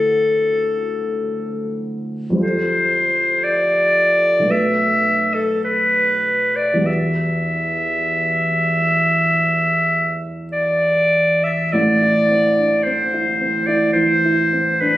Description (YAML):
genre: classical, impressionist duo for clarinet and grand piano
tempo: 48-59 BPM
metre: 4/4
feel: rubato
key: E minor, A minor from 11.7 s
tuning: A4 = 440 Hz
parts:
  - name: bright clarinet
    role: melody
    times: 0.0-15.0 s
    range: A4 to E5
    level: -16 LUFS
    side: left 1 dB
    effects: none
  - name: dark baby grand piano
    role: accompaniment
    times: 0.0-15.0 s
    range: A1 to B4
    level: -21 LUFS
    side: right 1 dB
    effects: none
room: moderate recital hall reverb, RT60 1.3 s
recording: recorded on a phone in the room, studio reverb, compression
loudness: -15 LUFS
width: side -15 dB against mid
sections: 0.0-11.7 A section; 11.7-15.0 B section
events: none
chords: 0.0 D9; 2.4 Fadd9; 4.5 B5; 6.9 Emadd9; 11.7 Amadd11